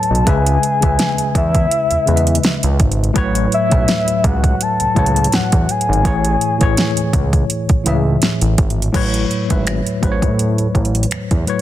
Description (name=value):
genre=contemporary R&B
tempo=83 BPM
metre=4/4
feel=swing 54% on 16ths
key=A major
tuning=A4 = 440 Hz
part: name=soft octave-layered synth lead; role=melody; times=0.0-7.1 s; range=E5 to A5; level=-19 LUFS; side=left 2 dB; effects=chorus, tremolo, tape echo
part: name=mellow tine electric piano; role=accompaniment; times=0.0-11.6 s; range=A2 to E5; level=-19 LUFS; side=left 2 dB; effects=medium stereo tremolo
part: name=smooth R&B drum kit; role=drums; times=0.0-11.6 s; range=crash cymbal, finger snaps, hi-hat, kick drum, snare drum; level=-17 LUFS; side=right 1 dB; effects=overdrive
part: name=fat analog bass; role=bass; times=0.1-11.5 s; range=G#1 to A2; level=-17 LUFS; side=equal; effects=none
room=little or no reverb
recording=dense, heavily limited modern master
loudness=-13 LUFS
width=side -13 dB against mid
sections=0.0-8.9 A section; 8.9-11.6 B section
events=none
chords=0.3 C#m7; 3.2 A69; 6.1 Amaj7; 8.9 A69